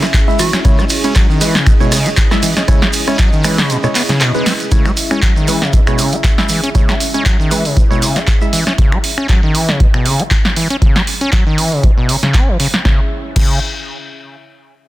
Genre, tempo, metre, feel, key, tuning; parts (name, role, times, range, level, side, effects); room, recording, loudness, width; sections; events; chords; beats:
acid house; 118 BPM; 4/4; swing 55% on 16ths; C# minor; A4 = 439 Hz
warm analog pad; sustained chords; 0.0-13.1 s; C#4 to E5; -24 LUFS; equal; chorus, sidechain pumping
overdriven acid bass; riff; 0.0-13.6 s; B2 to C#4; -18 LUFS; equal; distortion, tube saturation, sidechain pumping, tape echo
punchy analog drum machine; drums; 0.0-13.5 s; crash cymbal, finger snaps, handclaps, hi-hat, ride cymbal, rim click, snare drum; -18 LUFS; right 1 dB
shekere; percussion; 0.0-8.8 s; -25 LUFS; right 2 dB
electronic kick drum; drums; 0.1-13.5 s; -13 LUFS; equal
percussive organ stab; stabs; 0.3-8.6 s; G#3 to E5; -21 LUFS; right 1 dB; chorus, phaser, tape echo
hollow square pluck; melody; 0.4-1.1 s; F#4; -25 LUFS; right 3 dB; lush chorus, tape echo
light reverb; dense, heavily limited modern master; -11 LUFS; side -16 dB against mid
0.0-4.7 A section; 4.7-12.9 B section; 12.9-14.9 C section
drop 0.0-4.7; kick drops out 3.7-4.7; drum fill 4.5; filter sweep on analog synth pad 4.7-12.9
0.0 C#m
0.14 | 0.65 1.16 1.67 2.17 | 2.68 3.19 3.70 4.21 | 4.72 5.22 5.73 6.24 | 6.75 7.26 7.77 8.28 | 8.78 9.29 9.80 10.31 | 10.82 11.33 11.83 12.34 | 12.85 13.36